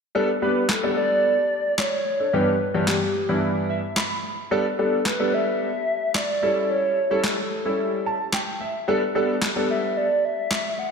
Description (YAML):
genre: dance-pop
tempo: 110 BPM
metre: 4/4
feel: straight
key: G lydian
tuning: A4 = 440 Hz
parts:
  - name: clear concert grand piano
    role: accompaniment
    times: 0.1-10.1 s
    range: G2 to B5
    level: -24 LUFS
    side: equal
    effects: analog chorus
  - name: hollow clarinet-like synth lead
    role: melody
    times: 0.4-10.9 s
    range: G4 to F#5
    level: -24 LUFS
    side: equal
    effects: chorus, diffuse ambient delay
  - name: electronic snare drum and handclaps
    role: drums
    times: 0.7-10.6 s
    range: none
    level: -28 LUFS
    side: left 1 dB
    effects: overdrive
room: wet plate reverb, RT60 2.4 s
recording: dreamy mix soaked in reverb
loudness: -20 LUFS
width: side -5 dB against mid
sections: 0.2-10.9 A section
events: grand piano fill 3.4-4.5, 7.8-8.9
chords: 0.2 Gadd9; 2.3 Em7/G; 4.5 Gadd9; 6.4 A7/G; 8.9 Gadd9